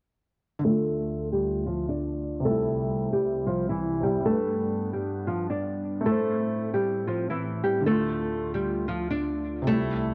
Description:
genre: hip hop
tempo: 133 BPM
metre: 4/4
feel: half-time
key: D dorian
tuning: A4 = 441 Hz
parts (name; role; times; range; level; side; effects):
- nylon-string guitar; melody; 0.6-10.1 s; E3 to D5; -29 LUFS; equal; low-pass filter, tape echo
- felt-muted upright piano; accompaniment; 0.6-10.1 s; C3 to C5; -34 LUFS; equal; low-pass filter
- warbly tape-like pad; sustained chords; 0.6-10.1 s; C2 to F4; -36 LUFS; equal; chorus, built-in reverb, low-pass filter
room: small room ambience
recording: dry, gritty hardware recording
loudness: -27 LUFS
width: mono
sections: 0.6-10.1 A section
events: filter sweep 0.6-10.1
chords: 0.6 Dm; 2.4 C; 4.3 G; 6.1 Am; 7.9 Dm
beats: | 0.65 1.10 1.55 2.00 | 2.45 2.90 3.35 3.80 | 4.25 4.71 5.16 5.61 | 6.06 6.51 6.96 7.41 | 7.86 8.31 8.77 9.22 | 9.67 10.12

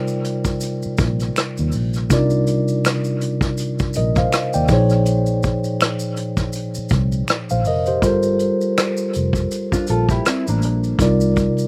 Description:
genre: R&B, neo-soul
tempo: 81 BPM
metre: 4/4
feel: swing 57% on 16ths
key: unclear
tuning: A4 = 440 Hz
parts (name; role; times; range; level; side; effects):
- mellow tine electric piano; accompaniment; 0.0-11.7 s; Bb2 to G5; -22 LUFS; equal; slapback echo
- maracas and finger snaps; percussion; 0.1-11.7 s; none; -35 LUFS; equal; none
- vintage brush drum kit; drums; 0.2-11.7 s; hi-hat, kick drum, rim click; -23 LUFS; equal; none
- vintage muted fingered electric bass; bass; 0.9-11.5 s; F1 to Eb2; -23 LUFS; equal; none
- mellow electric guitar; second line; 9.7-11.0 s; Bb3 to A4; -25 LUFS; equal; slapback echo
room: little or no reverb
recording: recorded outdoors, with no room sound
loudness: -19 LUFS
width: mono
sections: 0.0-11.7 A section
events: none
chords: 0.0 Cm11; 4.7 Bbm11; 8.0 Gm11; 11.0 Cm11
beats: 0.62 1.36 | 2.10 2.84 3.58 4.32 | 5.06 5.80 6.54 7.29 | 8.03 8.77 9.51 10.25 | 10.99

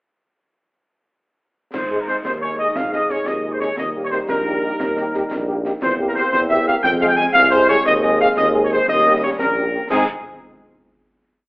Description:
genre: military-style march for wind band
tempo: 118 BPM (dotted quarters)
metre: 6/8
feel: straight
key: Ab major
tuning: A4 = 440 Hz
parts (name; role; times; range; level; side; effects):
- clear trumpet section; melody; 1.7-10.0 s; Ab4 to Ab5; -17 LUFS; equal; none
- warm trombone section; sustained chords; 1.7-10.0 s; G3 to Eb4; -26 LUFS; equal; none
- mellow tuba; bass; 1.7-10.0 s; Bb1 to Ab2; -23 LUFS; equal; none
- concert snare drum, clash cymbals and concert bass drum; drums; 1.7-10.1 s; none; -30 LUFS; equal; none
- warm French horn section; accompaniment; 1.9-10.0 s; Ab3 to Ab4; -25 LUFS; equal; none
room: moderate large studio reverb, RT60 1.1 s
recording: telephone sound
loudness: -15 LUFS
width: side -26 dB against mid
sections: 1.7-9.9 A section; 9.9-10.9 final chord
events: none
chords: 1.7 Ab5; 3.8 Eb; 5.8 C7/E; 6.8 Fm; 7.9 Ab/Eb; 8.9 Eb7; 9.9 Ab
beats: | 1.74 2.25 | 2.76 3.27 | 3.78 4.29 | 4.80 5.31 | 5.82 6.33 | 6.84 7.35 | 7.86 8.37 | 8.88 9.39 | 9.90

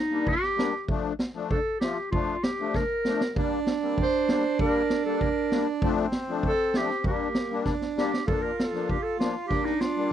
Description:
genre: klezmer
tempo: 98 BPM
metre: 2/4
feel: straight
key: G minor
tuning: A4 = 440 Hz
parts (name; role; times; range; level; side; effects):
- bright clarinet; melody; 0.0-10.1 s; Eb4 to C5; -28 LUFS; equal; none
- musette accordion; accompaniment; 0.1-10.1 s; F3 to F4; -30 LUFS; left 7 dB; none
- street-band drum kit; drums; 0.3-9.9 s; kick drum, snare drum; -29 LUFS; right 1 dB; none
- accordion; second line; 3.4-10.1 s; Bb3 to F4; -29 LUFS; right 7 dB; slapback echo
room: little or no reverb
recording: dry, close 1970s-style studio recording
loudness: -24 LUFS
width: side -10 dB against mid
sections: 0.0-8.3 A section; 8.3-10.1 B section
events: drum fill 2.7-3.4, 7.7-8.3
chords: 0.0 Gm; 0.9 Dm; 3.4 Gm; 5.8 Dm; 7.0 Gm; 8.3 Bb; 9.5 Gm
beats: 0.27 | 0.89 1.51 | 2.13 2.75 | 3.36 3.98 | 4.59 5.21 | 5.82 6.44 | 7.05 7.66 | 8.28 8.89 | 9.50 10.11

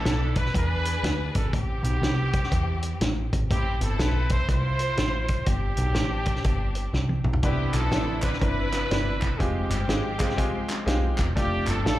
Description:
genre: uptempo gospel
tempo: 122 BPM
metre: 4/4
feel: swing 63% on 8ths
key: unclear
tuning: A4 = 440 Hz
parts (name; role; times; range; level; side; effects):
- clear studio string section; melody; 0.0-12.0 s; B3 to C5; -34 LUFS; left 4 dB; slapback echo
- warm trumpet; melody; 0.0-12.0 s; G4 to C5; -32 LUFS; right 3 dB; slapback echo
- overdriven picked electric bass; bass; 0.0-12.0 s; E1 to E2; -26 LUFS; equal; none
- warm soul drum kit; drums; 0.1-12.0 s; hi-hat, kick drum, snare drum, toms; -27 LUFS; equal; none
- bright baby grand piano; accompaniment; 7.4-12.0 s; C3 to C5; -30 LUFS; left 1 dB; slapback echo
- bright tonewheel organ; sustained chords; 7.4-12.0 s; C3 to B4; -36 LUFS; right 4 dB; none
- group handclap; percussion; 7.7-11.8 s; none; -36 LUFS; right 1 dB; none
room: little or no reverb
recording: live gig heard through the venue's PA, club reverb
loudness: -23 LUFS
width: side -15 dB against mid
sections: 0.0-12.0 A section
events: drum fill 6.9-7.4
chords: 0.0 Cmaj9 (rootless); 0.5 E7; 1.5 Am9; 3.5 Fmaj9; 7.4 Cmaj9; 9.4 Fmadd9; 11.4 F69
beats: 0.05 0.54 1.04 | 1.53 2.02 2.52 3.01 | 3.50 3.99 4.49 4.98 | 5.47 5.96 6.46 6.95 | 7.44 7.93 8.42 8.91 | 9.40 9.89 10.39 10.88 | 11.37 11.86

